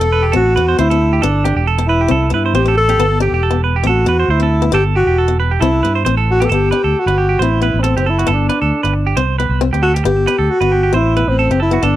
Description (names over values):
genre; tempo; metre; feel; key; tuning
highlife; 136 BPM; 4/4; swing 55% on 16ths; G major; A4 = 440 Hz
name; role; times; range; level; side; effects
breathy alto saxophone; melody; 0.0-12.0 s; C4 to A4; -16 LUFS; left 1 dB; none
picked swing-style acoustic guitar; accompaniment; 0.0-12.0 s; B3 to D4; -22 LUFS; left 9 dB; none
clean electric guitar; arpeggios; 0.0-12.0 s; F#4 to C5; -19 LUFS; right 8 dB; tape echo
fingered electric bass; bass; 0.0-12.0 s; E1 to G2; -16 LUFS; equal; none
room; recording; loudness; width
small room ambience; dry, close 1970s-style studio recording; -12 LUFS; side -13 dB against mid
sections
0.0-6.5 A section; 6.5-12.0 B section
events
none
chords
0.4 Am; 1.2 Gadd9; 2.1 C5; 3.0 Gadd9; 3.9 Am; 4.7 Gadd9; 5.6 C; 6.5 Gadd9; 7.4 Am; 8.3 Gadd9; 9.2 C5; 10.0 Gadd9; 10.9 Am